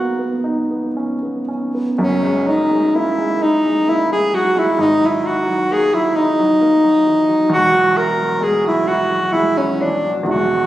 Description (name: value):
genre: classical, impressionist duo for alto saxophone and grand piano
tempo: 43 BPM (dotted quarters)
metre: 6/8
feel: uneven beats, rubato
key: F# mixolydian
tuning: A4 = 440 Hz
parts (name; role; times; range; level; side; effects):
- warm alto saxophone; melody; 0.0-10.7 s; C#4 to A#4; -15 LUFS; equal; none
- warm baby grand piano; accompaniment; 0.0-10.7 s; E1 to E4; -20 LUFS; right 1 dB; none
room: moderate scoring stage reverb, RT60 1.8 s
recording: recorded on a phone in the room, studio reverb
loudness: -14 LUFS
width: side -14 dB against mid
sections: 0.0-2.0 A section; 2.0-10.7 B section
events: none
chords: 0.0 G#m11; 2.0 F#69; 4.8 G#sus2; 7.5 E9